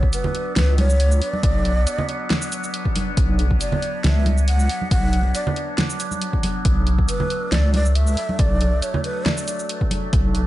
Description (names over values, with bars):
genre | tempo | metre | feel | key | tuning
deep dubstep | 138 BPM | 4/4 | swing 54% on 16ths, half-time | B minor | A4 = 440 Hz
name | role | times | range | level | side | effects
breathy long shakuhachi | melody | 0.0-9.9 s | B4 to F#5 | -28 LUFS | right 1 dB | dub echo
overtone-sweeping drone | sustained chords | 0.0-10.5 s | F#3 to D4 | -29 LUFS | equal | chorus, built-in reverb, phaser
deep soft wobble bass | bass | 0.0-10.5 s | B1 to C#2 | -18 LUFS | equal | chorus
electronic kick drum | drums | 0.0-10.2 s | none | -21 LUFS | equal | overdrive, studio reverb
deep house drum kit | drums | 0.1-10.4 s | hi-hat, shaker, snare drum | -25 LUFS | equal | overdrive, studio reverb
congas | percussion | 0.2-10.0 s | none | -28 LUFS | right 2 dB | none
room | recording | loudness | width
digital ambience | nothing above 11.0 kHz | -18 LUFS | side -15 dB against mid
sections
0.0-10.5 A section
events
none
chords
0.0 Bm